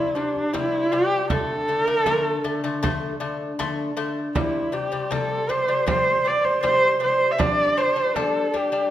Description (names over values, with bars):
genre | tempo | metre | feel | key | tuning
mongolian traditional, Mongolian folk | 79 BPM | 4/4 | straight | C gong mode | A4 = 440 Hz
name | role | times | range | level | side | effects
warm horsehead fiddle | melody | 0.0-8.9 s | D4 to E5 | -21 LUFS | right 1 dB | none
lute | arpeggios | 0.0-8.9 s | C3 to D4 | -26 LUFS | left 4 dB | none
frame drum | percussion | 0.4-8.6 s | none | -29 LUFS | right 3 dB | none
room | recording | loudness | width
wet recital hall reverb, RT60 1.5 s | none | -20 LUFS | side -12 dB against mid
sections
0.0-8.9 A section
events
none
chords
0.0 C5; 1.3 D5; 4.4 C5; 7.4 G5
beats
0.54 | 1.30 2.06 2.83 3.59 | 4.35 5.11 5.88 6.64 | 7.40 8.16